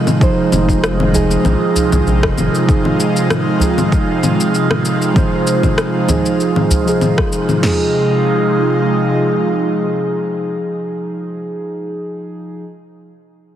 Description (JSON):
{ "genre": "organic downtempo", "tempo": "97 BPM", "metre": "4/4", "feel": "swing 53% on 16ths", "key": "F minor", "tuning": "A4 = 441 Hz", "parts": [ { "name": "muted felt-like synth keys", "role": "accompaniment", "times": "0.0-12.6 s", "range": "F3 to C5", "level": "-17 LUFS", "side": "right 3 dB", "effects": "chorus, sidechain pumping, low-pass filter, digital delay" }, { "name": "airy breathy pad", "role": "sustained chords", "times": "0.0-10.9 s", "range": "C3 to F4", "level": "-18 LUFS", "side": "left 1 dB", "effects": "chorus, phaser, sidechain pumping" }, { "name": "electronic congas, shaker and rim click", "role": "drums", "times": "0.1-7.6 s", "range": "none", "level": "-20 LUFS", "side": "left 2 dB", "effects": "overdrive, studio ambience" }, { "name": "deep house drum kit", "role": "drums", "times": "0.2-7.8 s", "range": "crash cymbal, kick drum, snare drum, toms", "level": "-16 LUFS", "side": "equal", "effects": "overdrive, studio ambience" }, { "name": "round analog bass", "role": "bass", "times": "0.5-2.5 s", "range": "F1 to C2", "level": "-17 LUFS", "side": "equal", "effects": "sidechain pumping" }, { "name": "udu", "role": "percussion", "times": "1.1-6.8 s", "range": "none", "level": "-19 LUFS", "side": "equal", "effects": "none" } ], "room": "moderate huge ambient reverb, RT60 4.6 s", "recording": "heavily compressed radio sound", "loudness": "-13 LUFS", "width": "side -10 dB against mid", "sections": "0.0-7.6 A section; 7.6-10.1 B section", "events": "none", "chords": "0.0 Fm7" }